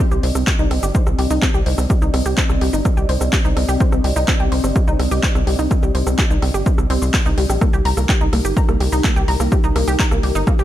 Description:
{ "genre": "melodic techno", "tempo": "126 BPM", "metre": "4/4", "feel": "straight", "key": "C minor", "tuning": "A4 = 440 Hz", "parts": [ { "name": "dark analog pad", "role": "sustained chords", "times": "0.0-10.6 s", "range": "C4 to Eb5", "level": "-25 LUFS", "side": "left 1 dB", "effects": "chorus, sidechain pumping" }, { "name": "analog pluck", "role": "arpeggios", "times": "0.0-10.6 s", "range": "Bb3 to C6", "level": "-23 LUFS", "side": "equal", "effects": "chorus, sidechain pumping, tape echo" }, { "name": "deep house drum kit", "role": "drums", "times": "0.0-10.6 s", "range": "handclaps, hi-hat, rim click, shaker", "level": "-25 LUFS", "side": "equal", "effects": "sidechain pumping on hats, small room ambience, sidechain pumping on perc" }, { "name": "tight sequencer bass", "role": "bass", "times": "0.1-10.6 s", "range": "G1 to C2", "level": "-19 LUFS", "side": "equal", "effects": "sidechain pumping" }, { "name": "electronic kick drum", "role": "drums", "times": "0.5-10.6 s", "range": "none", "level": "-17 LUFS", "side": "equal", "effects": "small room ambience" } ], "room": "digital ambience", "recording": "none", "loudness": "-15 LUFS", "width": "side -13 dB against mid", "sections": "0.0-10.6 A section", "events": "filter sweep on synth arpeggio sound 0.0-10.6", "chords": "0.0 Cm; 7.6 Eb" }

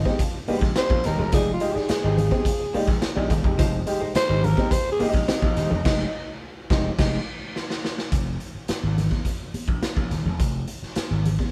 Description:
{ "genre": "funk", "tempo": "106 BPM", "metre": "4/4", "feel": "straight", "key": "F dorian", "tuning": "A4 = 440 Hz", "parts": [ { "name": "growling tenor saxophone", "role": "melody", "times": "0.0-6.5 s", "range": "Eb4 to C5", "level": "-28 LUFS", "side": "equal", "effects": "none" }, { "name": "dark upright piano", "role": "stabs", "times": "0.0-5.7 s", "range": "F3 to G4", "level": "-32 LUFS", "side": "equal", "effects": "none" }, { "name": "hollow-body jazz guitar", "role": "accompaniment", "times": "0.1-7.2 s", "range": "Ab3 to D5", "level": "-33 LUFS", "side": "equal", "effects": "none" }, { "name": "electric guitar through a small old amp", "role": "riff", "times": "0.1-5.8 s", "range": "F3 to C4", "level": "-35 LUFS", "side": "equal", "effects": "none" }, { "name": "raw garage drum kit", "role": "drums", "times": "0.1-11.5 s", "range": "crash cymbal, hi-hat, kick drum, snare drum", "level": "-28 LUFS", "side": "equal", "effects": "none" }, { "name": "congas", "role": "percussion", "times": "0.1-11.5 s", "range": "none", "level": "-34 LUFS", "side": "equal", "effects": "none" }, { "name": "vintage slap bass", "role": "bass", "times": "0.5-11.3 s", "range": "Eb1 to Bb1", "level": "-28 LUFS", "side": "equal", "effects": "none" } ], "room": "light reverb", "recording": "band playing live in one room", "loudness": "-24 LUFS", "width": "mono", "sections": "0.0-8.1 A section; 8.1-11.5 B section", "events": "tenor saxophone solo 0.0-8.1; band accent 5.9-8.1; drum fill 7.6-8.1", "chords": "0.0 Fm9; 8.1 Fm" }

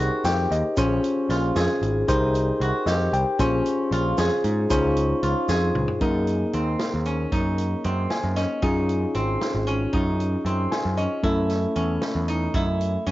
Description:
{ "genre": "progressive instrumental, band music in an uneven meter", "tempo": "229 BPM (eighths)", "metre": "5/8", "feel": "straight", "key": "unclear", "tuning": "A4 = 443 Hz", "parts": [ { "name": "mellow tine electric piano", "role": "accompaniment", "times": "0.0-13.1 s", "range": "A3 to Ab5", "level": "-25 LUFS", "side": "left 2 dB", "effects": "overdrive" }, { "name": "steel-string zither", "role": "arpeggios", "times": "0.0-13.1 s", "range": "C4 to Ab4", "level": "-27 LUFS", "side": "right 1 dB", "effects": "none" }, { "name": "overdriven picked electric bass", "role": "bass", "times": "0.0-13.1 s", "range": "Ab1 to Ab2", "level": "-25 LUFS", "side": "equal", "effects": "none" }, { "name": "tube shaker", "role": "percussion", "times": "0.2-5.7 s", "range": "none", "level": "-40 LUFS", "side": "right 5 dB", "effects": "none" }, { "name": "swinging big-band drum kit", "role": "drums", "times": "0.3-13.1 s", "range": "hi-hat, kick drum, snare drum, toms", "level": "-30 LUFS", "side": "equal", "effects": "cassette tape" } ], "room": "light reverb, small room ambience", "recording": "home recording on cassette, nothing above 7.6 kHz", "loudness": "-21 LUFS", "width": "side -16 dB against mid", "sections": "0.0-6.0 A section; 6.0-13.1 B section", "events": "tine electric piano fill 0.0-0.8, 2.6-3.4, 7.8-8.6, 10.5-11.2; drum fill 5.5-6.0", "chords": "0.0 Cm7; 0.8 Bbm7; 2.1 Cm7; 3.4 Bbm7; 4.7 Dbmaj7; 6.0 Absus2; 8.6 Dbadd9; 11.2 A" }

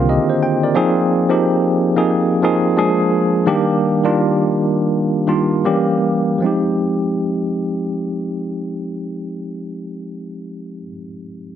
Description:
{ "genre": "R&B", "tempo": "76-90 BPM", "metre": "4/4", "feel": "swing 62% on 16ths", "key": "F dorian", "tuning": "A4 = 443 Hz", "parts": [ { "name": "tine electric piano", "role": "accompaniment", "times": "0.0-11.6 s", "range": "D3 to G5", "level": "-16 LUFS", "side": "equal", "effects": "medium stereo tremolo" } ], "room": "moderate plate reverb, RT60 1.9 s, digital ambience", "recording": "heavily compressed radio sound, multiband compression", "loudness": "-15 LUFS", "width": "side -10 dB against mid", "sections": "0.0-6.4 A section; 6.4-9.6 B section", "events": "tine electric piano fill 0.0-0.7; slowing down 0.7-6.4", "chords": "0.0 Cm9; 0.7 Bb9sus4; 2.8 Bb7; 3.5 Ebmaj7; 5.6 Edim7; 6.4 Fm9" }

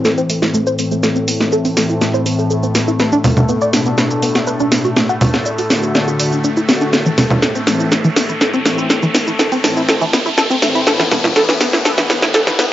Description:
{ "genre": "melodic techno", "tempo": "122 BPM", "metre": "4/4", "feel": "straight", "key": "A dorian", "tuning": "A4 = 440 Hz", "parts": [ { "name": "brassy analog pad", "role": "stabs", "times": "0.0-12.7 s", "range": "A2 to F#4", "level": "-21 LUFS", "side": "left 2 dB", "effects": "chorus, analog delay" }, { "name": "analog drone", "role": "drone", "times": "0.4-12.7 s", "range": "A2 to A3", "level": "-23 LUFS", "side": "equal", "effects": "chorus" }, { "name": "house drum kit", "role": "drums", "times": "0.0-12.7 s", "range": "congas, hi-hat, shaker, snare drum", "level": "-15 LUFS", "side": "equal", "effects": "none" }, { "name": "riser", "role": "sound effects", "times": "0.0-12.7 s", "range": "none", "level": "-24 LUFS", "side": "equal", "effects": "none" }, { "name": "tight sequenced synth", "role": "arpeggios", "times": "0.1-12.6 s", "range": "E3 to F#5", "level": "-18 LUFS", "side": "equal", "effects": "chorus, phaser, analog delay" } ], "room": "little or no reverb", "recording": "dry, gritty hardware recording, cassette tape, high-pass filter, nothing above 7.6 kHz", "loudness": "-12 LUFS", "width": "side -13 dB against mid", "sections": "0.0-12.7 A section", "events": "build-up 0.0-12.7; drum fill 0.0-12.7; riser 0.0-12.7; filter sweep on synth arpeggio sound 0.0-12.7; filter sweep on analog synth pad 0.0-12.7; filter sweep 0.0-12.7", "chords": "0.0 Am; 3.0 Bm7; 5.0 D; 6.9 Am; 10.9 Asus2" }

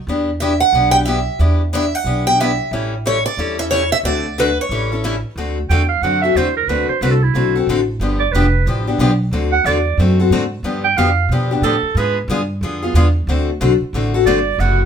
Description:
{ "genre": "acoustic string swing (jazz manouche)", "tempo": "182 BPM", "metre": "4/4", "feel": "swing 62% on 8ths", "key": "D mixolydian", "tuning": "A4 = 440 Hz", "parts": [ { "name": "picked steel-string acoustic guitar", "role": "accompaniment", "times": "0.1-14.8 s", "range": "C3 to A4", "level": "-19 LUFS", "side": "left 4 dB", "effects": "none" }, { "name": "upright bass", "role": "bass", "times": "0.1-14.9 s", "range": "F1 to B2", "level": "-18 LUFS", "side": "right 1 dB", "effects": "none" }, { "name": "picked steel-string acoustic guitar", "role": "melody", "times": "0.4-5.0 s", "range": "B4 to G5", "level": "-17 LUFS", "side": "right 2 dB", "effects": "none" }, { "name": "bright clarinet", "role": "second line", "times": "5.7-12.2, 14.3-14.8 s", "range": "E4 to G5", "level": "-18 LUFS", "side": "right 8 dB", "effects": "none" } ], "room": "moderate studio reverb, RT60 0.6 s", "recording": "minimal, uncompressed stereo recording", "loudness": "-14 LUFS", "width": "side -8 dB against mid", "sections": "0.0-5.4 A section; 5.4-14.9 B section", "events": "clarinet solo 5.4-14.9", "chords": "0.1 Em7; 2.7 A7; 4.0 D7; 4.7 A7; 5.4 D7; 8.0 G7; 9.3 D7; 10.6 G7; 12.0 G#dim7; 13.3 D7" }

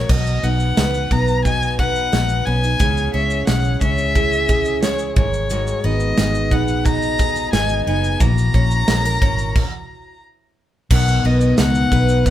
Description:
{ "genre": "acoustic pop", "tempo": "89 BPM", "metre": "4/4", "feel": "straight", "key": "B major", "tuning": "A4 = 440 Hz", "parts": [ { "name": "rich violin", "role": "melody", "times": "0.0-12.3 s", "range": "C#5 to A#5", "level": "-22 LUFS", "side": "left 3 dB", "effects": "none" }, { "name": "picked twelve-string acoustic guitar", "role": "accompaniment", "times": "0.0-12.3 s", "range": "G#2 to B4", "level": "-23 LUFS", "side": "left 2 dB", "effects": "none" }, { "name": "vintage muted fingered electric bass", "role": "bass", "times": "0.0-12.3 s", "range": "F#1 to C#2", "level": "-20 LUFS", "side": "equal", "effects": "none" }, { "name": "fingerpicked steel-string acoustic guitar", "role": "arpeggios", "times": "0.1-12.3 s", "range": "D#3 to G#4", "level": "-28 LUFS", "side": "right 6 dB", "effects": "none" }, { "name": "modern studio drum kit", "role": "drums", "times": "0.1-12.3 s", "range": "crash cymbal, kick drum, shaker, snare drum", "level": "-20 LUFS", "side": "right 1 dB", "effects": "none" } ], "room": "moderate studio reverb, RT60 0.9 s", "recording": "band playing live in one room", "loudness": "-15 LUFS", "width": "side -12 dB against mid", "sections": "0.1-10.9 A section; 10.9-12.3 B section", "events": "stop 9.6-10.9", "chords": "0.1 B; 2.8 C#m; 5.2 G#m7; 8.2 F#7; 10.9 B" }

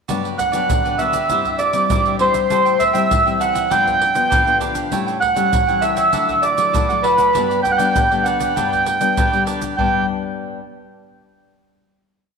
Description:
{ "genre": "samba and choro", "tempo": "99 BPM", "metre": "4/4", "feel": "straight", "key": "G major", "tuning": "A4 = 437 Hz", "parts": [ { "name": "cavaquinho", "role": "accompaniment", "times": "0.1-10.0 s", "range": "D4 to G5", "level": "-28 LUFS", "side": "right 6 dB", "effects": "none" }, { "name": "nylon-string guitar", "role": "accompaniment", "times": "0.1-10.6 s", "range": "G2 to E4", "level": "-24 LUFS", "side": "left 9 dB", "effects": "none" }, { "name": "egg shaker, surdo and pandeiro", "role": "percussion", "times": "0.1-9.9 s", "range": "none", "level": "-24 LUFS", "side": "right 1 dB", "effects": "none" }, { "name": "mellow accordion", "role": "melody", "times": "0.4-10.1 s", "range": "B4 to G5", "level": "-16 LUFS", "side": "right 2 dB", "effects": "none" } ], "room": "wet echo chamber reverb, RT60 2.0 s", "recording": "1960s-style stereo with parts hard left and right", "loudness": "-15 LUFS", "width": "side -5 dB against mid", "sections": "0.1-9.8 A section; 9.8-12.2 final chord", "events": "none", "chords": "0.1 Gmaj7; 1.3 C/G; 2.5 Am7; 3.7 G7; 4.9 A7; 6.1 Dadd9; 7.3 G" }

